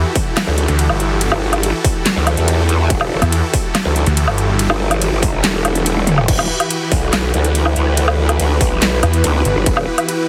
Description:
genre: heavy wobble dubstep.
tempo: 142 BPM.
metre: 4/4.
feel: half-time.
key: E minor.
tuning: A4 = 440 Hz.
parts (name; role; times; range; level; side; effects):
supersaw chords; sustained chords; 0.0-10.3 s; E3 to B4; -24 LUFS; equal; sidechain pumping.
snarling distorted saw bass; bass; 0.0-4.7, 9.0-9.5 s; G1 to E2; -18 LUFS; equal; distortion, overdrive.
dubstep drum kit; drums; 0.2-10.2 s; crash cymbal, handclaps, hi-hat, ride cymbal, snare drum, toms, woodblock; -22 LUFS; equal; none.
electronic kick drum; drums; 0.2-9.7 s; none; -20 LUFS; equal; distortion.
growl bass; bass; 0.5-9.9 s; E1 to E2; -18 LUFS; equal; chorus, overdrive.
granular cloud pad; texture; 6.8-10.3 s; E4 to B4; -26 LUFS; equal; built-in reverb, sidechain pumping.
room: light reverb, digital ambience.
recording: heavily compressed radio sound, multiband compression.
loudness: -16 LUFS.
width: mono.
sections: 0.0-6.3 A section; 6.3-10.3 A section.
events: drop 0.0-6.3, 6.3-10.3; drum fill 6.0-6.3.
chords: 0.0 Emadd9.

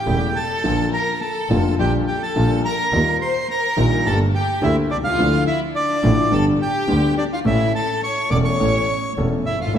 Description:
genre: tango.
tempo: 106 BPM.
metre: 4/4.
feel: rubato.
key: unclear.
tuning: A4 = 442 Hz.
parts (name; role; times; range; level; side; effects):
bandoneon; melody; 0.0-9.8 s; D5 to D6; -23 LUFS; right 2 dB; none.
warm studio violin section; second line; 0.0-9.8 s; D4 to D5; -25 LUFS; left 3 dB; none.
clear grand piano; accompaniment; 0.1-9.8 s; E1 to A4; -21 LUFS; left 2 dB; none.
clear double bass; bass; 0.1-9.8 s; E1 to Eb2; -22 LUFS; right 2 dB; none.
room: wet scoring stage reverb, RT60 2.0 s.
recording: none.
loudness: -17 LUFS.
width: side -9 dB against mid.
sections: 0.0-9.8 A section.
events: none.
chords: 0.0 A; 0.7 Bb; 1.8 Gm7/Bb; 2.9 Ebadd9; 4.1 Gmadd9; 5.2 Dmadd9; 6.3 G; 7.5 A.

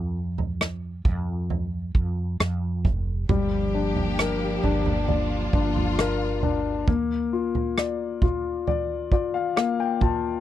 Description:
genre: pop ballad.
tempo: 67 BPM.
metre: 4/4.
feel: straight.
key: Bb major.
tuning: A4 = 444 Hz.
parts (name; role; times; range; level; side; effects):
woody fretless electric bass; bass; 0.0-6.8 s; F1 to F2; -28 LUFS; right 1 dB; ensemble chorus.
unplugged drum kit; drums; 0.4-10.2 s; kick drum, rim click, toms; -26 LUFS; right 2 dB; none.
warm grand piano; accompaniment; 3.3-10.4 s; G3 to A5; -25 LUFS; left 7 dB; none.
clear studio string section; sustained chords; 3.3-6.9 s; F3 to G4; -29 LUFS; right 1 dB; none.
room: little or no reverb.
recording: dry, close 1970s-style studio recording.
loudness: -22 LUFS.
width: side -12 dB against mid.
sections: 0.0-10.4 A section.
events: grand piano fill 8.7-10.4.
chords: 0.0 N.C.; 3.3 Gm7; 6.9 Bb.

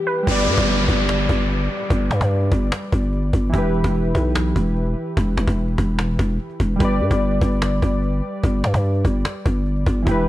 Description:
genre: hip hop, trap.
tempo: 147 BPM.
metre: 4/4.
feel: half-time.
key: G major.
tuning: A4 = 440 Hz.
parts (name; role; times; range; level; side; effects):
warbly lo-fi synth keys; accompaniment; 0.0-10.3 s; E3 to D5; -24 LUFS; equal; chorus.
growling 808-style bass; bass; 0.3-10.3 s; E1 to G2; -19 LUFS; equal; none.
cajon; drums; 0.3-10.2 s; none; -24 LUFS; equal; none.
downlifter; sound effects; 0.3-3.5 s; none; -25 LUFS; equal; none.
room: little or no reverb.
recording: none.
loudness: -17 LUFS.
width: side -15 dB against mid.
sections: 0.3-10.3 A section.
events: break 0.0.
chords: 0.3 G; 3.5 Em; 6.8 G.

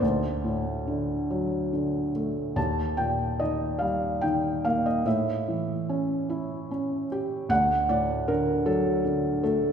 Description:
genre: classical, lyrical solo piano.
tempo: 48 BPM (dotted quarters).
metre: 6/8.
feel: uneven beats, rubato.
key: unclear.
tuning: A4 = 439 Hz.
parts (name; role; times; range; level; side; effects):
felt-muted upright piano; solo; 0.0-9.7 s; D2 to A5; -24 LUFS; equal; none.
room: wet scoring stage reverb, RT60 1.9 s.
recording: recorded in a church or concert hall.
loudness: -24 LUFS.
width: side -7 dB against mid.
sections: 0.0-9.7 A section.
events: none.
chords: 0.0 D; 2.6 Eb; 5.1 A7; 7.5 D.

